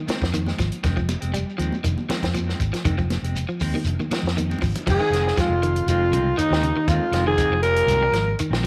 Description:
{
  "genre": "afrobeat",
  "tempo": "119 BPM",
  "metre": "4/4",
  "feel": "straight",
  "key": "F minor",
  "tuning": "A4 = 440 Hz",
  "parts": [
    { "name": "electric guitar at the edge of break-up", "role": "arpeggios", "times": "0.0-8.7 s", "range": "Db3 to G3", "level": "-32 LUFS", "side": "equal", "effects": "none" },
    { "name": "clean electric guitar", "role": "stabs", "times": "0.1-8.7 s", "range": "Eb3 to C4", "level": "-35 LUFS", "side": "equal", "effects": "slapback echo" },
    { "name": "fingered electric bass", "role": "bass", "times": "0.1-8.7 s", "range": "F1 to F2", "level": "-27 LUFS", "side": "equal", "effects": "none" },
    { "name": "compact cocktail drum kit", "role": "drums", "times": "0.1-8.7 s", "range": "crash cymbal, hi-hat, kick drum, snare drum", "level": "-30 LUFS", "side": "equal", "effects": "none" },
    { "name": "congas", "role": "percussion", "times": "0.1-4.9 s", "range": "none", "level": "-34 LUFS", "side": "equal", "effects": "none" },
    { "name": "shekere", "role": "percussion", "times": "0.1-8.7 s", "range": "none", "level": "-35 LUFS", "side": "equal", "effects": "none" },
    { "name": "breathy alto saxophone", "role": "melody", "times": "4.9-8.3 s", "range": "Eb4 to Bb4", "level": "-24 LUFS", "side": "equal", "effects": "none" },
    { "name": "brilliant bass trombone", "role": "second line", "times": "4.9-8.3 s", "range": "Eb2 to Bb2", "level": "-35 LUFS", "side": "equal", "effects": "none" },
    { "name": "warm trumpet", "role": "second line", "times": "4.9-8.4 s", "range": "Eb4 to Bb4", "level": "-31 LUFS", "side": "equal", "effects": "none" }
  ],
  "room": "light reverb, small room ambience",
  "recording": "none",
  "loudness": "-22 LUFS",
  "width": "mono",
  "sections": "0.0-4.9 A section; 4.9-8.7 B section",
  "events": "drum fill 4.5-4.9",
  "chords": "0.0 Fm7",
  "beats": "0.33 | 0.84 1.34 1.84 2.35 | 2.85 3.35 3.86 4.36 | 4.86 5.37 5.87 6.37 | 6.88 7.38 7.88 8.39"
}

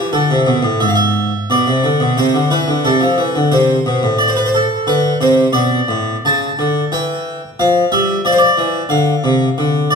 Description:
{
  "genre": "classical, baroque-style suite movement for harpsichord",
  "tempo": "90 BPM",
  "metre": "4/4",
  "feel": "rubato",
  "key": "A minor",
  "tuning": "A4 = 441 Hz",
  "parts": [
    { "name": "harpsichord", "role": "solo", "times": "0.0-9.9 s", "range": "G#2 to A5", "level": "-12 LUFS", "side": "equal", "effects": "none" }
  ],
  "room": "wet recital hall reverb, RT60 1.6 s",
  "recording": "minimal, uncompressed stereo recording",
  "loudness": "-12 LUFS",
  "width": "side -5 dB against mid",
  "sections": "0.0-9.9 A section",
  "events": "none",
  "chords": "0.0 Am; 0.8 G#dim; 2.2 Am/C; 4.9 D5; 6.3 A7/C#; 7.6 Dm",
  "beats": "0.13 0.82 1.51 | 2.18 2.86 3.54 4.21 | 4.88 5.54 6.26 6.92 | 7.58 8.24 8.90 9.56"
}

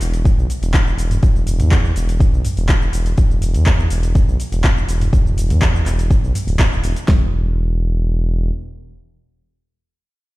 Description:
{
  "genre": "afro house",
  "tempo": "123 BPM",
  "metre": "4/4",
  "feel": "straight",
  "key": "unclear",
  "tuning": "A4 = 439 Hz",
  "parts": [
    { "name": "smooth synth bass", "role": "bass", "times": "0.0-8.5 s", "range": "D1 to E2", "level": "-18 LUFS", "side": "equal", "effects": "sidechain pumping" },
    { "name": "afro-pop drum kit", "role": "drums", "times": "0.0-7.1 s", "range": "cabasa, handclaps, hi-hat, toms", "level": "-23 LUFS", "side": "right 1 dB", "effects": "none" },
    { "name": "deep house drum kit", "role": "drums", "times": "0.3-7.2 s", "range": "kick drum, snare drum", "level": "-14 LUFS", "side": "equal", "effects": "none" }
  ],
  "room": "little or no reverb",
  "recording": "played on a big sound system in a bare room, stone room reverb",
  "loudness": "-14 LUFS",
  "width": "side -19 dB against mid",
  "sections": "0.0-7.1 A section; 7.1-10.4 B section",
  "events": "drop 0.0-7.1",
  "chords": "none",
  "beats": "0.25 0.74 | 1.22 1.71 2.20 2.69 | 3.18 3.66 4.15 4.64 | 5.13 5.62 6.10 6.59 | 7.08 7.57 8.05"
}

